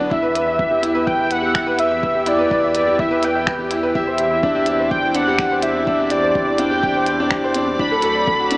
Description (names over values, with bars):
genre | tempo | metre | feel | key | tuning
piano and strings electronica | 125 BPM | 4/4 | straight | E minor | A4 = 439 Hz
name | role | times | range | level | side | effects
lush unison pad | sustained chords | 0.0-8.6 s | D3 to E5 | -26 LUFS | equal | chorus, sidechain pumping
warm grand piano | riff | 0.0-8.6 s | D4 to E5 | -20 LUFS | equal | none
round analog bass | bass | 0.0-8.6 s | D2 to E2 | -32 LUFS | equal | sidechain pumping
warm velvety synth lead | melody | 0.1-8.6 s | D5 to B5 | -19 LUFS | equal | chorus
electronic kick drum | drums | 0.1-8.4 s | none | -27 LUFS | equal | small room reverb
minimal click drum kit | drums | 0.4-8.6 s | finger snaps, hi-hat | -24 LUFS | equal | small room reverb
room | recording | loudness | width
light reverb | small speaker sound | -15 LUFS | side -22 dB against mid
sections
0.0-8.6 A section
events
none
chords
0.1 Em; 4.0 Cadd9/E; 7.8 D